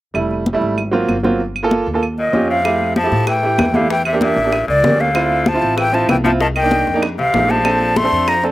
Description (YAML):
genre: Afro-Cuban jazz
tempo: 192 BPM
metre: 4/4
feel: straight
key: F major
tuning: A4 = 439 Hz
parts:
  - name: clear baby grand piano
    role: accompaniment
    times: 0.1-8.5 s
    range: Gb3 to A4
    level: -19 LUFS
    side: right 3 dB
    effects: none
  - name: upright bass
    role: bass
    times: 0.1-8.5 s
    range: F1 to A2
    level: -22 LUFS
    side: equal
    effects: none
  - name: claves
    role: percussion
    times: 0.1-8.4 s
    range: none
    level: -26 LUFS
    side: right 5 dB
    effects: slapback echo
  - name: congas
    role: percussion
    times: 0.1-8.5 s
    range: none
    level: -21 LUFS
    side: left 1 dB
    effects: none
  - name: breathy concert flute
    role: melody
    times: 2.2-8.4 s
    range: D5 to C6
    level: -17 LUFS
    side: equal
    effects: slapback echo
  - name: bright tenor saxophone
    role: second line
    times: 2.2-8.4 s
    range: Bb2 to A3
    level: -22 LUFS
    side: left 4 dB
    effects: slapback echo
  - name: bongos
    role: percussion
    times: 2.7-8.5 s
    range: none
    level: -27 LUFS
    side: left 5 dB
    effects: slapback echo
room: little or no reverb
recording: recorded outdoors, with no room sound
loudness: -13 LUFS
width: side -16 dB against mid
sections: 0.1-2.7 A section; 2.7-8.5 B section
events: none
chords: 0.1 Fmaj7; 0.8 Ab13; 1.4 Gm7; 2.0 Eb9; 2.7 Fmaj9; 3.9 Em7b5; 4.5 A7b9; 5.2 Dm9; 6.4 Cm7; 7.0 F7; 7.7 Bbmaj7